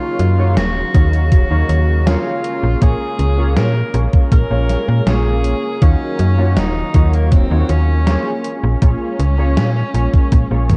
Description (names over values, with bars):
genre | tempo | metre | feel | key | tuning
vaporwave | 80 BPM | 4/4 | straight | Eb minor | A4 = 440 Hz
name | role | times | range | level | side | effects
warm tenor saxophone | melody | 0.0-10.8 s | Bb3 to Bb4 | -26 LUFS | equal | tape echo
warbly lo-fi synth keys | accompaniment | 0.0-10.8 s | Gb3 to F5 | -25 LUFS | equal | lush chorus, tape echo
warm studio string section | sustained chords | 0.0-10.8 s | Db3 to F5 | -31 LUFS | equal | none
slap-like FM bass | bass | 0.2-10.8 s | Eb1 to Bb2 | -17 LUFS | equal | tube saturation
gated 80s digital drum machine | drums | 0.2-10.8 s | hi-hat, snare drum, toms | -23 LUFS | equal | gated reverb, gated reverb snare, vintage 12-bit sampler grit
electronic kick drum | drums | 0.9-10.8 s | none | -15 LUFS | equal | vintage 12-bit sampler grit
room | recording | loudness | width
light reverb, digital ambience | cassette tape | -15 LUFS | mono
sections
0.0-10.8 A section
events
none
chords
0.0 Ebm9; 2.4 Bbm7; 5.8 Ebm9; 8.4 Bbm7